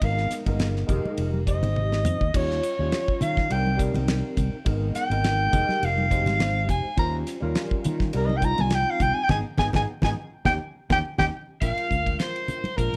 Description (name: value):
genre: electric jazz fusion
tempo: 104 BPM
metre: 4/4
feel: swing 55% on 16ths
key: Eb mixolydian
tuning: A4 = 437 Hz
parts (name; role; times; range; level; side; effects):
- breathy soprano saxophone; melody; 0.0-13.0 s; Bb4 to Bb5; -29 LUFS; equal; none
- overdriven tine electric piano; accompaniment; 0.0-13.0 s; G3 to Db5; -34 LUFS; equal; ensemble chorus
- fretless electric bass; bass; 0.0-13.0 s; F1 to Eb3; -29 LUFS; equal; none
- damped 70s drum kit; drums; 0.0-13.0 s; crash cymbal, hi-hat, kick drum, ride cymbal, snare drum, toms; -30 LUFS; equal; none
- congas; percussion; 0.6-12.8 s; none; -33 LUFS; equal; none
- cranked stack guitar; second line; 11.6-13.0 s; Bb4 to F5; -35 LUFS; equal; overdrive
room: moderate club reverb, RT60 0.7 s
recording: none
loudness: -25 LUFS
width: mono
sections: 0.0-11.6 A section; 11.6-13.0 B section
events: soprano saxophone solo 0.0-11.6; drum fill 1.8-2.3, 11.0-11.6; band accent 9.3-11.6; tine electric piano fill 10.5-11.6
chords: 0.0 Abmadd9; 0.9 Fm11; 2.3 Eb9; 3.5 Cm7; 4.7 Abmadd9; 5.5 Fm11; 7.0 Eb13; 8.1 Cm7; 9.3 Abm; 10.2 Eb7; 11.6 Bb7